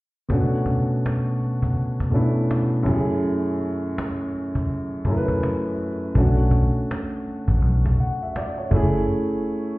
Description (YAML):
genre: lo-fi hip hop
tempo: 82 BPM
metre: 4/4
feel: swing 62% on 16ths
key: B dorian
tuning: A4 = 441 Hz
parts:
  - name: dark upright piano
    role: accompaniment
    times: 0.3-9.8 s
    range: F#2 to F#5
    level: -22 LUFS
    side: equal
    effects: low-pass filter
  - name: cajon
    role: drums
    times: 0.3-8.9 s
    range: none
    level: -26 LUFS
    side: equal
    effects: none
  - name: vintage muted fingered electric bass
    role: bass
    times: 6.2-9.0 s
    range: F#1 to B1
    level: -18 LUFS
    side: equal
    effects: none
room: moderate studio reverb, RT60 0.7 s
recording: heard muffled through a wall, stone room reverb, EQ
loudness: -20 LUFS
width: side -20 dB against mid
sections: 0.3-9.8 A section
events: break 9.1-9.8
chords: 0.3 Bm9; 2.9 F#m9; 6.2 Bm9; 8.7 F#m9